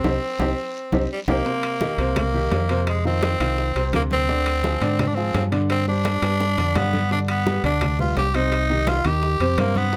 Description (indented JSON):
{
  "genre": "latin, salsa",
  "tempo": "170 BPM",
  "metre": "4/4",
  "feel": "straight",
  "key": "C minor",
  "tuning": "A4 = 440 Hz",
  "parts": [
    { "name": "growling tenor saxophone", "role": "melody", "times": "0.0-10.0 s", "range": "G3 to G4", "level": "-26 LUFS", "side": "equal", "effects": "none" },
    { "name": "clear concert grand piano", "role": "accompaniment", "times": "0.0-10.0 s", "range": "B2 to D5", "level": "-29 LUFS", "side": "equal", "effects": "none" },
    { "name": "deep dub fingered electric bass", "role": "bass", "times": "0.0-10.0 s", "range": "C2 to Ab2", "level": "-26 LUFS", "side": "equal", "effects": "none" },
    { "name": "bongos", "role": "percussion", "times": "0.0-10.0 s", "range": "none", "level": "-35 LUFS", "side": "equal", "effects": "none" },
    { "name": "congas", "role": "percussion", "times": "0.0-10.0 s", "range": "none", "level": "-32 LUFS", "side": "equal", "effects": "none" },
    { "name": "guiro", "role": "percussion", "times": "0.0-10.0 s", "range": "none", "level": "-45 LUFS", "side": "equal", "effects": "none" },
    { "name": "timbales", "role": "percussion", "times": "0.0-9.8 s", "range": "none", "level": "-32 LUFS", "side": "equal", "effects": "none" }
  ],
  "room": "little or no reverb",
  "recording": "close, detailed microphones",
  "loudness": "-22 LUFS",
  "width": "mono",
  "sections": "0.0-1.5 A section; 1.5-10.0 A section",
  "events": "band accent 0.0-1.5; drum fill 0.4-1.5, 6.0-7.1",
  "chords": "0.0 Cm; 1.5 Cm7; 2.9 F5; 4.3 Dm7b5; 5.7 Gsus4; 6.4 G; 8.5 Cm",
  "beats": "| 0.04 0.39 0.75 1.10 | 1.46 1.81 2.16 2.52 | 2.87 3.22 3.58 3.93 | 4.28 4.64 4.99 5.34 | 5.70 6.05 6.40 6.75 | 7.11 7.46 7.81 8.16 | 8.52 8.87 9.22 9.57 | 9.93"
}